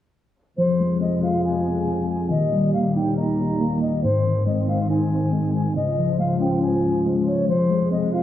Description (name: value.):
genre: hip hop.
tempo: 139 BPM.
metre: 4/4.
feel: half-time.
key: F minor.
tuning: A4 = 441 Hz.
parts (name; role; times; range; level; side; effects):
breathy silver concert flute; melody; 0.6-8.2 s; C5 to Bb5; -26 LUFS; left 2 dB; tape echo.
mellow tine electric piano; accompaniment; 0.6-8.2 s; Ab2 to F5; -21 LUFS; left 1 dB; medium stereo tremolo.
rich symphonic string section; sustained chords; 0.6-8.2 s; Db2 to C4; -26 LUFS; equal; none.
room: moderate recital hall reverb, RT60 1.7 s.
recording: worn, warbling old tape, cassette tape, warbly pitch drift, low-pass filter, studio reverb.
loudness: -19 LUFS.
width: side -12 dB against mid.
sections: 0.6-8.2 A section.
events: none.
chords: 0.6 Fm; 2.3 Eb; 4.0 Ab; 5.8 Db; 7.5 Fm.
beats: | 0.58 1.01 1.44 1.88 | 2.31 2.74 3.17 3.60 | 4.03 4.47 4.90 5.33 | 5.76 6.19 6.62 7.06 | 7.49 7.92.